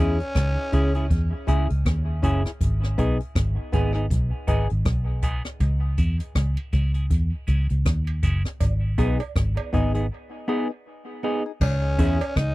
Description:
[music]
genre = dub reggae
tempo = 80 BPM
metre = 4/4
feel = swing 59% on 16ths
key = C# minor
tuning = A4 = 440 Hz
[part]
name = growling tenor saxophone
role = melody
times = 0.0-1.1, 11.6-12.5 s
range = C#4 to D#4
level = -31 LUFS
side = equal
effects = dub echo
[part]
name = semi-hollow electric guitar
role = accompaniment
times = 0.0-12.2 s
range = B3 to G#4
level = -30 LUFS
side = right 3 dB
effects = high-pass filter, dub echo
[part]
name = percussive organ stab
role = stabs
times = 0.0-12.2 s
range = B3 to G#4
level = -32 LUFS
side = left 5 dB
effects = chorus, high-pass filter, dub echo
[part]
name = vintage muted fingered electric bass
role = bass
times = 0.0-12.5 s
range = F#1 to E2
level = -22 LUFS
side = equal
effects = none
[part]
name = jazz brush drum kit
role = drums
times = 0.2-12.5 s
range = crash cymbal, hi-hat, kick drum, rim click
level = -26 LUFS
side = equal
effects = none
[part]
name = cowbell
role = percussion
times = 5.6-12.4 s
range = none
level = -37 LUFS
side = right 8 dB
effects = high-pass filter on perc, dub echo
[sound]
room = little or no reverb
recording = dry, close 1970s-style studio recording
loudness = -21 LUFS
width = side -19 dB against mid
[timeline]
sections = 0.0-11.6 A section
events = break 0.0-11.6; filter sweep 2.6-8.6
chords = 0.0 C#m; 2.6 G#m; 5.6 C#m; 8.6 G#m; 11.6 C#m

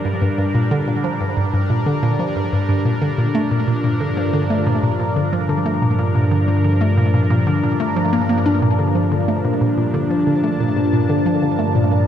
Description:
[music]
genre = ambient, sequencer-driven space music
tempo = 91 BPM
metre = 4/4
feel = straight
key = unclear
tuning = A4 = 438 Hz
[part]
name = phased analog pad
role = sustained chords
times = 0.0-12.1 s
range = G2 to A5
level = -19 LUFS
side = equal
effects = phaser, chorus
[part]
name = hollow square pluck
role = riff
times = 0.0-12.0 s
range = G2 to D4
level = -19 LUFS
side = equal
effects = chorus, tape echo
[part]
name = bubbling stepped-filter texture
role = texture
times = 0.0-12.1 s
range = Bb3 to D5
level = -32 LUFS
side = right 2 dB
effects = chorus, built-in reverb
[sound]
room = wet huge ambient reverb, RT60 7.9 s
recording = in a vast, echoing space, cassette tape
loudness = -16 LUFS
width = side -9 dB against mid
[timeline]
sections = 0.0-12.1 A section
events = none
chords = 0.0 Gm; 3.3 Bb/G

